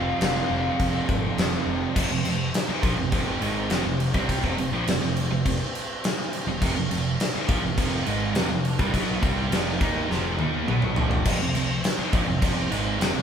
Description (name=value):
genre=hard rock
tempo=103 BPM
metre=4/4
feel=straight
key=F minor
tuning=A4 = 440 Hz
part: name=lead guitar through a small cranked amp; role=melody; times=0.0-1.3 s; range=F5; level=-29 LUFS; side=left 4 dB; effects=overdrive
part: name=overdriven tonewheel organ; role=sustained chords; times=0.0-13.2 s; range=F3 to G4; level=-39 LUFS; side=equal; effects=none
part: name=cranked stack guitar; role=riff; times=0.0-13.2 s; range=F2 to Eb4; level=-28 LUFS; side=right 7 dB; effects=overdrive
part: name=heavy high-gain guitar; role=riff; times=0.0-13.2 s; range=F2 to Eb4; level=-32 LUFS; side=left 6 dB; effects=distortion
part: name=sludgy distorted guitar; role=riff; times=0.0-11.3 s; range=F2 to Eb4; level=-35 LUFS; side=equal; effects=none
part: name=picked electric bass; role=bass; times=0.0-13.2 s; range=F1 to Eb2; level=-30 LUFS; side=equal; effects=none
part: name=big rock drum kit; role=drums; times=0.2-13.1 s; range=crash cymbal, kick drum, snare drum, toms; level=-25 LUFS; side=left 1 dB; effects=none
room=moderate studio reverb, RT60 0.8 s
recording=band playing live in one room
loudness=-22 LUFS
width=side -8 dB against mid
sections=0.0-2.0 A section; 2.0-11.3 B section; 11.3-13.2 B section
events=drum fill 10.1-11.3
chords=0.0 F5; 2.0 Fm